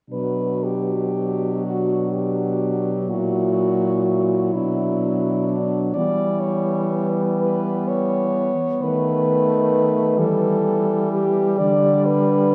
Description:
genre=classical, lyrical piece for horn quartet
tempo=40-44 BPM (dotted quarters)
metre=6/8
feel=rubato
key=B minor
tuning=A4 = 440 Hz
part: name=warm French horn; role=melody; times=0.1-12.5 s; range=D4 to D5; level=-24 LUFS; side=equal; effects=none
part: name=warm French horn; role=second line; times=0.1-12.5 s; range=B3 to E4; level=-29 LUFS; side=equal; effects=none
part: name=warm French horn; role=accompaniment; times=0.1-12.5 s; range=F#3 to A3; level=-27 LUFS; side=equal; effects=none
part: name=mellow French horn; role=bass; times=0.1-12.5 s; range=A#2 to E3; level=-26 LUFS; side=equal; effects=none
room=wet church reverb, RT60 2.7 s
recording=dark, warm production, nothing above 10.6 kHz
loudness=-20 LUFS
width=mono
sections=0.1-12.5 A section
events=none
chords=0.1 Bm; 3.1 F#7/A#; 4.5 Bm; 6.0 Em; 8.8 B7/D#; 10.2 Em; 11.6 G/D

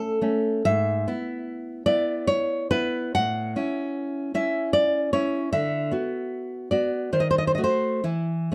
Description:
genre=romantic piece for solo classical guitar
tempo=65-78 BPM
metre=3/4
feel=rubato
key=A major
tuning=A4 = 443 Hz
part: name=nylon-string guitar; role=solo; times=0.0-8.5 s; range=G#2 to F#5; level=-25 LUFS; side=equal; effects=none
room=moderate studio reverb, RT60 0.5 s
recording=dark, warm production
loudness=-25 LUFS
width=mono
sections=0.0-8.5 A section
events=none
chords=0.0 F#m (rootless); 0.6 E/G#; 3.2 A; 5.5 Bm/D; 7.1 D#dim7; 8.0 N.C.

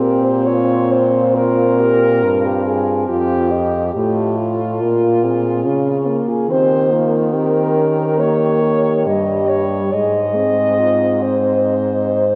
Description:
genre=classical, lyrical piece for horn quartet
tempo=70 BPM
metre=4/4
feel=rubato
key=unclear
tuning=A4 = 440 Hz
part: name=warm French horn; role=melody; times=0.0-12.4 s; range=F4 to Eb5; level=-25 LUFS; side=equal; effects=none
part: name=warm French horn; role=second line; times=0.0-12.4 s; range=F4 to Eb5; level=-20 LUFS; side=equal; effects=none
part: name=mellow French horn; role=accompaniment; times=0.0-12.3 s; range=G3 to Db4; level=-23 LUFS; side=equal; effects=none
part: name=warm French horn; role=bass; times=0.0-12.4 s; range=F2 to Eb3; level=-22 LUFS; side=equal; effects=none
room=wet church reverb, RT60 3.4 s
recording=dark, warm production, nothing above 11.0 kHz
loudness=-16 LUFS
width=mono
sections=0.0-12.4 A section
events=none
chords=0.0 Bb5; 3.1 F7; 4.8 Bbm; 6.5 Eb7; 9.9 Ab

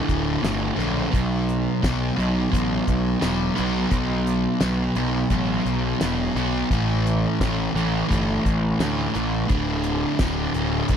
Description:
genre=classic rock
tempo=86 BPM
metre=4/4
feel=straight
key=unclear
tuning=A4 = 441 Hz
part: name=sludgy distorted guitar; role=riff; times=0.0-11.0 s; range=D2 to B3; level=-22 LUFS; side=equal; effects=overdrive
part: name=fuzz picked electric bass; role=bass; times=0.1-11.0 s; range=D1 to D2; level=-26 LUFS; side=equal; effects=overdrive
part: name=damped 70s drum kit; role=drums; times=0.1-11.0 s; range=hi-hat, kick drum, snare drum, tambourine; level=-24 LUFS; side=equal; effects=none
room=little or no reverb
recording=dry, close 1970s-style studio recording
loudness=-20 LUFS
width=side -8 dB against mid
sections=0.0-11.0 A section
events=none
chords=0.0 D5; 1.1 B5; 6.7 A5; 9.5 D5

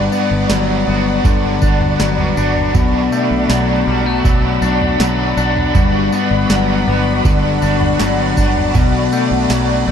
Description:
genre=dream pop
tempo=80 BPM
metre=4/4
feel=straight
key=unclear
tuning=A4 = 445 Hz
part: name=crunchy overdriven guitar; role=accompaniment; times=0.0-9.9 s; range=B2 to F#4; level=-22 LUFS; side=right 5 dB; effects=tremolo, analog chorus
part: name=string machine, violas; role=sustained chords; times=0.0-9.9 s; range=D5 to B5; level=-20 LUFS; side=equal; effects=ensemble chorus
part: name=electric guitar at the edge of break-up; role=arpeggios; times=0.0-9.9 s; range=G2 to D4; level=-17 LUFS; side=left 5 dB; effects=wide subtle chorus, ping-pong delay
part: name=fingered electric bass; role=bass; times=0.0-9.9 s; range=G1 to B1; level=-20 LUFS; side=right 1 dB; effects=none
part: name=booming analog drum machine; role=drums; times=0.1-9.7 s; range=kick drum, snare drum, tambourine, toms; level=-16 LUFS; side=right 2 dB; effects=overdrive
room=light reverb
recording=dark, warm production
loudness=-12 LUFS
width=side -8 dB against mid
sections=0.0-9.9 A section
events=none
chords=0.0 Gmaj7; 2.7 Bm7; 5.7 Gmaj7; 8.7 Bm7

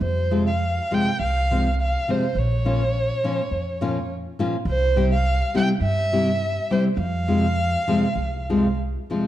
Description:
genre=mexican folk, mariachi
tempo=103 BPM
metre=4/4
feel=rubato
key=F harmonic minor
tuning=A4 = 437 Hz
part: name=dark violin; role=melody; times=0.0-8.7 s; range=C5 to G5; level=-25 LUFS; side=right 1 dB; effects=none
part: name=upright bass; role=bass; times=0.0-8.9 s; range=Bb1 to G2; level=-24 LUFS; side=right 1 dB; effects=none
part: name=nylon-string guitar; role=accompaniment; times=0.3-9.3 s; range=F2 to G4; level=-24 LUFS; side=left 1 dB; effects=none
room=moderate recital hall reverb, RT60 1.3 s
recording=dark, warm production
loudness=-20 LUFS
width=side -13 dB against mid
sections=0.0-9.3 A section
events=none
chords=0.0 Fm; 2.4 Bbm; 4.7 C; 7.0 Fm

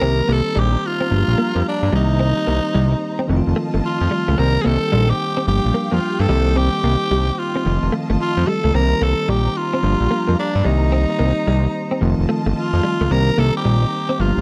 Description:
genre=R&B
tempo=110 BPM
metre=4/4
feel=swing 63% on 16ths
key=C dorian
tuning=A4 = 440 Hz
part: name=growling tenor saxophone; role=melody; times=0.0-14.4 s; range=D4 to Bb4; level=-24 LUFS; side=equal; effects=none
part: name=bell-like tine electric piano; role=accompaniment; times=0.0-14.4 s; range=Eb3 to G4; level=-25 LUFS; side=equal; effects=none
part: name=warm studio string section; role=sustained chords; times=0.0-14.4 s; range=Eb4 to Bb5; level=-34 LUFS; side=equal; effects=none
part: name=direct-recorded clean electric guitar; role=riff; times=0.0-14.2 s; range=G3 to C4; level=-27 LUFS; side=equal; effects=ensemble chorus
part: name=fat analog bass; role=bass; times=0.0-14.4 s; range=F1 to G2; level=-20 LUFS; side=equal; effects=none
room=small room ambience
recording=dark, warm production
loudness=-18 LUFS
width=mono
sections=0.0-14.4 A section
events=none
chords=0.0 Cm7; 1.1 Gm7; 1.9 Cm7; 3.3 F7; 4.4 Cm7; 5.5 Gm7; 6.3 Cm7; 7.7 F7; 8.7 Cm7; 9.8 Gm7; 10.7 Cm7; 12.0 F7; 13.1 Cm7

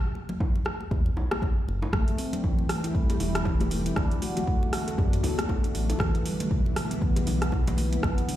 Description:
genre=afro house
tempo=118 BPM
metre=4/4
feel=swing 58% on 16ths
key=unclear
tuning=A4 = 440 Hz
part: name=congas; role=percussion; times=0.2-8.4 s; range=none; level=-37 LUFS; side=left 2 dB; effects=none
part: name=electronic kick drum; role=drums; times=0.4-8.2 s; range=none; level=-26 LUFS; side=equal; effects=studio reverb
part: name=bongos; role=percussion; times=0.4-8.2 s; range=none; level=-39 LUFS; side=equal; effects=none
part: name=afro-pop drum kit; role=drums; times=0.7-8.4 s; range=hi-hat, rim click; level=-33 LUFS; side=equal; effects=studio reverb
part: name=round analog bass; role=bass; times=0.9-8.1 s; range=E1 to F#2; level=-28 LUFS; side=equal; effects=sidechain pumping
part: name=ethereal airy pad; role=sustained chords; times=2.3-8.4 s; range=B2 to G4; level=-34 LUFS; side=left 1 dB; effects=ensemble chorus, built-in reverb, sidechain pumping
part: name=handpan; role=arpeggios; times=1.9-8.4 s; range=B2 to A4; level=-31 LUFS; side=equal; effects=sidechain pumping, ping-pong delay
room=light reverb, small room ambience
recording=played on a big sound system in a bare room, large studio reverb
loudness=-24 LUFS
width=side -13 dB against mid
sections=0.0-8.4 A section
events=none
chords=0.0 B5; 1.9 Am7; 4.0 D6; 6.0 Em7

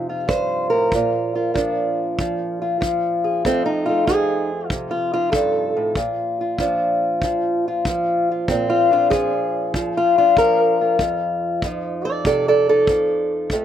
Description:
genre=acoustic country blues, solo or duo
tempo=96 BPM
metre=4/4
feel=swing 68% on 8ths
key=unclear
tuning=A4 = 435 Hz
part: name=fingerpicked old ladder-braced acoustic guitar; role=melody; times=0.0-13.6 s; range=F2 to D5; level=-18 LUFS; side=equal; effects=slapback echo
part: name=kick drum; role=drums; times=0.3-13.6 s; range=none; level=-25 LUFS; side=equal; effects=none
room=little or no reverb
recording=recorded outdoors, with no room sound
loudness=-17 LUFS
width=side -10 dB against mid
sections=0.0-13.6 A section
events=none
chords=0.0 F7; 0.9 Bb; 3.4 F7; 6.0 Bb; 11.0 F7

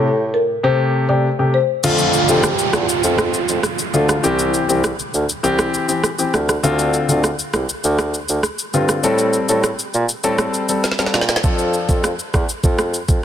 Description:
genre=dancehall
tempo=100 BPM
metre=4/4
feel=straight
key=F major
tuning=A4 = 441 Hz
part: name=folk marimba with soft mallets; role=melody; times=0.0-1.6 s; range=Bb4 to D5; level=-20 LUFS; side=left 3 dB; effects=low-pass filter, digital delay
part: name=warm grand piano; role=accompaniment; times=0.0-12.1 s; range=C3 to A4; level=-19 LUFS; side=left 2 dB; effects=low-pass filter
part: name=mellow bassoon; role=bass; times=0.0-13.2 s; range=C2 to Bb2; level=-20 LUFS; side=right 1 dB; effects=none
part: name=breathy flute-like synth lead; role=second line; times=1.8-3.9 s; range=F4 to G4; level=-23 LUFS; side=right 8 dB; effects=chorus, digital delay
part: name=island pop drum kit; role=drums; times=1.8-13.2 s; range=crash cymbal, kick drum, rim click, shaker, snare drum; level=-20 LUFS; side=right 1 dB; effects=none
part: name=downlifter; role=sound effects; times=1.8-6.6 s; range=none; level=-24 LUFS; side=right 2 dB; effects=none
room=light reverb, small room reverb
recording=dense, heavily limited modern master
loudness=-15 LUFS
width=side -9 dB against mid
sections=0.0-1.8 A section; 1.8-13.2 B section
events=kick muted 1.8-11.4; drum fill 10.8-11.4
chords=0.0 Am7; 1.8 F6; 4.2 C; 6.6 Dm7; 9.0 Am7; 11.4 F6

